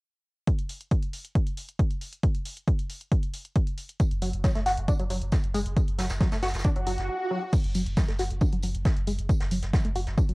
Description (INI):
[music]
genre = driving peak-time techno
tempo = 136 BPM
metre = 4/4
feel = straight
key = F# minor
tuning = A4 = 441 Hz
[part]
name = electronic kick drum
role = drums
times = 0.5-10.3 s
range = none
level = -24 LUFS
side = equal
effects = overdrive, cassette tape
[part]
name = punchy analog drum machine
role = drums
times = 0.5-10.3 s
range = crash cymbal, hi-hat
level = -42 LUFS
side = equal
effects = overdrive, sidechain pumping on hats, cassette tape, sidechain pumping on cymbals
[part]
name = jazz brush drum kit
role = drums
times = 4.0-10.3 s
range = hi-hat, snare drum, tambourine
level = -40 LUFS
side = equal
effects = high-pass filter on hats, cassette tape, high-pass filter on snare, high-pass filter on perc, high-pass filter on room
[part]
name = warm sub bass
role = bass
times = 4.1-10.3 s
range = F#1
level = -31 LUFS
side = equal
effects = tube saturation, sidechain pumping, low-pass filter
[part]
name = tight sequenced synth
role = riff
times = 4.2-10.3 s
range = F#3 to F#4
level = -31 LUFS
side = equal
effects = chorus, phaser, sidechain pumping, cassette tape, analog delay
[part]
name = swell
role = sound effects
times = 6.8-7.5 s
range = none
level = -31 LUFS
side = right 1 dB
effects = none
[sound]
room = light reverb, studio ambience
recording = home recording on cassette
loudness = -24 LUFS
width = side -25 dB against mid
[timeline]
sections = 0.5-7.5 A section; 7.5-10.3 B section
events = swell 6.8-7.5; break 7.1-7.5; filter sweep on synth arpeggio sound 7.5-10.3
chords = none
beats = | 0.47 0.91 1.35 1.79 | 2.23 2.68 3.12 3.56 | 4.00 4.44 4.88 5.32 | 5.76 6.21 6.65 7.09 | 7.53 7.97 8.41 8.85 | 9.29 9.73 10.18